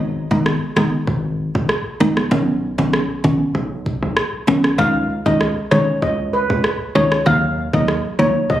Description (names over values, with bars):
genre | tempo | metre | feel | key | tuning
dancehall | 97 BPM | 4/4 | straight | G# minor | A4 = 440 Hz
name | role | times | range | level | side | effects
mallet-like synth pluck | accompaniment | 0.0-8.4 s | D#3 to D#4 | -18 LUFS | equal | chorus, phaser
hard-hitting 808-style bass | bass | 0.0-8.6 s | F#1 to D#2 | -22 LUFS | equal | none
island pop drum kit | drums | 0.3-8.6 s | kick drum, rim click | -22 LUFS | equal | overdrive
steel pan | melody | 4.8-8.6 s | B4 to E#5 | -19 LUFS | left 1 dB | none
room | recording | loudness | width
light reverb, digital ambience | recorded on a phone in the room, club reverb, compression | -16 LUFS | side -12 dB against mid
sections
0.0-8.6 A section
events
none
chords
0.0 G#m; 2.3 Badd9; 4.8 C#sus2; 7.3 D#m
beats
0.46 1.08 1.70 | 2.31 2.93 3.55 4.17 | 4.79 5.41 6.03 6.64 | 7.26 7.88 8.50